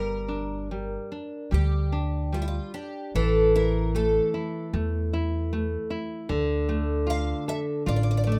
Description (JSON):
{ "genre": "fado-style ballad", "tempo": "76 BPM", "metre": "4/4", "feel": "rubato", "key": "D minor", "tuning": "A4 = 440 Hz", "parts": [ { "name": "picked twelve-string acoustic guitar", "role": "melody", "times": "0.0-8.4 s", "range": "E4 to F5", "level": "-31 LUFS", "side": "equal", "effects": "analog chorus" }, { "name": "nylon-string guitar", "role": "accompaniment", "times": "0.0-8.4 s", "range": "D3 to A4", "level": "-32 LUFS", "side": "equal", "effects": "none" }, { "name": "upright bass", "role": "bass", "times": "0.0-8.4 s", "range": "G1 to E2", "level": "-29 LUFS", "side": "equal", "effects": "none" } ], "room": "light reverb", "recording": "rough home demo mix", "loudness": "-27 LUFS", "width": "mono", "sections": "0.0-8.4 A section", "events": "none", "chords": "0.0 Gm; 3.1 A5; 6.3 Dm", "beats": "0.71 1.53 2.33 | 3.15 3.95 4.74 5.52 | 6.30 7.08 7.87" }